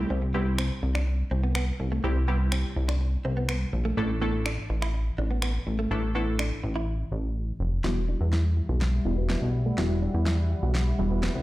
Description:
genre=dance-pop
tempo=124 BPM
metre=4/4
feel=straight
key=E minor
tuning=A4 = 440 Hz
part: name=wavetable chord stab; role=accompaniment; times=0.0-11.4 s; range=G3 to A4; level=-31 LUFS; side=equal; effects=low-pass filter
part: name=direct-recorded clean electric guitar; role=riff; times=0.0-11.3 s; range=A3 to F#4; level=-35 LUFS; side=right 2 dB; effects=wide subtle chorus, low-pass filter
part: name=chorused synth bass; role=bass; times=0.0-11.4 s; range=E1 to E2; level=-26 LUFS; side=equal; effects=none
part: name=electronic finger snaps and snare drum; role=drums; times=0.6-11.3 s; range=none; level=-34 LUFS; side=equal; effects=none
part: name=sweeping resonant pad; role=sustained chords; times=7.8-11.4 s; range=G3 to B5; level=-35 LUFS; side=left 3 dB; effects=chorus, low-pass filter
room=little or no reverb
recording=played on a big sound system in a bare room, large studio reverb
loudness=-24 LUFS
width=side -17 dB against mid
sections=0.0-7.8 A section; 7.8-11.4 B section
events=silent gap 6.9-7.8; build-up 7.8-11.4; drum fill 7.8-11.4; filter sweep 7.8-11.4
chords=0.0 C; 4.0 Asus4; 7.8 Emadd9

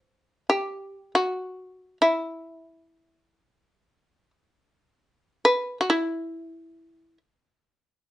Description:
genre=japanese traditional, Japanese chamber music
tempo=free time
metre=none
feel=none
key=E hirajoshi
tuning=A4 = 441 Hz
part: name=shamisen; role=solo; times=0.0-7.2 s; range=E4 to B4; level=-23 LUFS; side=equal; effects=none
room=light reverb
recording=dark, warm production, nothing above 10.4 kHz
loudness=-23 LUFS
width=side -15 dB against mid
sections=0.0-7.4 A section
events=none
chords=none

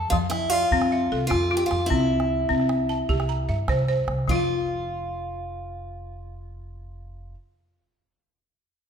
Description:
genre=west african traditional, West African string and xylophone music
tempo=101 BPM (dotted quarters)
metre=12/8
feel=straight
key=F major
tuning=A4 = 440 Hz
part: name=picked acoustic archtop guitar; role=melody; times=0.0-7.3 s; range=E4 to G4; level=-26 LUFS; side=equal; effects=none
part: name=upright bass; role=bass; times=0.0-7.3 s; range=F1 to G2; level=-29 LUFS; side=equal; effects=none
part: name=calabash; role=percussion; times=0.0-4.5 s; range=none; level=-30 LUFS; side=right 2 dB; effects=none
part: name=balafon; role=arpeggios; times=0.1-7.4 s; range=F3 to Bb5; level=-25 LUFS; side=left 2 dB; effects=none
room=wet recital hall reverb, RT60 1.5 s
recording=minimal, uncompressed stereo recording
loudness=-21 LUFS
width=side -7 dB against mid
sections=0.0-4.3 A section; 4.3-6.7 B section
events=none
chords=0.0 F; 1.9 C; 4.3 F5

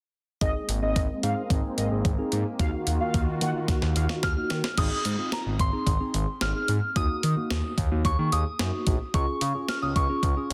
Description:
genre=synth-pop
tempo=110 BPM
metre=4/4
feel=straight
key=Ab mixolydian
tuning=A4 = 440 Hz
part: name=mellow synth brass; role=second line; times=0.4-4.0 s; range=Eb5 to Gb5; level=-35 LUFS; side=equal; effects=chorus, digital delay
part: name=mellow tine electric piano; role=accompaniment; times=0.4-10.5 s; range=Bb3 to Ab4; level=-35 LUFS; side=equal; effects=phaser, low-pass filter
part: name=lush unison pad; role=sustained chords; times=0.7-4.8 s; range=Eb3 to Gb4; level=-35 LUFS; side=equal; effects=chorus, phaser, low-pass filter
part: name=smooth synth bass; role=bass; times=0.4-10.5 s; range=Ab1 to Eb3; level=-30 LUFS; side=equal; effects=none
part: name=clean 12-bit digital drum machine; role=drums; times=0.4-10.5 s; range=crash cymbal, hi-hat, kick drum, snare drum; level=-30 LUFS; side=equal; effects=none
part: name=soft synth bell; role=melody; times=4.2-10.5 s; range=Bb5 to F6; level=-33 LUFS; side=equal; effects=chorus, digital delay
room=moderate plate reverb, RT60 1.7 s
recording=dense, heavily limited modern master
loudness=-26 LUFS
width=mono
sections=0.4-4.8 A section; 4.8-10.5 B section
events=filter sweep 0.4-4.8; drum fill 3.7-4.8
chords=0.4 Abadd9; 2.6 Ebmadd9; 4.8 Ab; 7.0 Ebm; 9.1 Db

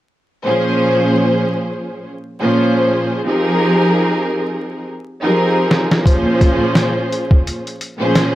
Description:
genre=hip hop, boom-bap hip-hop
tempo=86 BPM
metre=4/4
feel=swing 58% on 16ths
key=Bb dorian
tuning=A4 = 440 Hz
part: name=warm studio string section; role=accompaniment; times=0.5-8.3 s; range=Bb2 to C5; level=-15 LUFS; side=equal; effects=high-pass filter, low-pass filter
part: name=trip hop sampler-style drum kit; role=drums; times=5.7-8.3 s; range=hi-hat, kick drum, snare drum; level=-14 LUFS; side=equal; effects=none
room=moderate studio reverb, RT60 0.6 s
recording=dark, warm production, vinyl crackle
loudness=-13 LUFS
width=side -14 dB against mid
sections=0.5-8.3 A section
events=drum fill 5.4-6.1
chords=0.5 Bbm9; 3.3 Fm11; 6.1 Bbm9

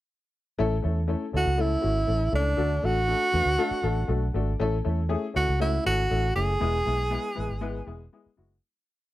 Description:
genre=uptempo 1960s-style soul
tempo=120 BPM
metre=4/4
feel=straight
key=A major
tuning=A4 = 438 Hz
part: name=warm upright piano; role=accompaniment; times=0.6-8.5 s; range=G#3 to A5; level=-30 LUFS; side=left 5 dB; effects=none
part: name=vintage muted fingered electric bass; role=bass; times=0.6-8.6 s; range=E1 to E2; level=-27 LUFS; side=right 1 dB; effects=none
part: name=breathy tenor saxophone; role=melody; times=1.4-8.1 s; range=D4 to G#4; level=-26 LUFS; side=right 1 dB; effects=none
room=light reverb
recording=none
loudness=-23 LUFS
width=side -15 dB against mid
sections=0.6-8.6 verse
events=upright piano fill 3.6-4.6; fade-out 6.6-8.6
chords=0.6 A; 2.6 D; 4.6 A; 6.6 E

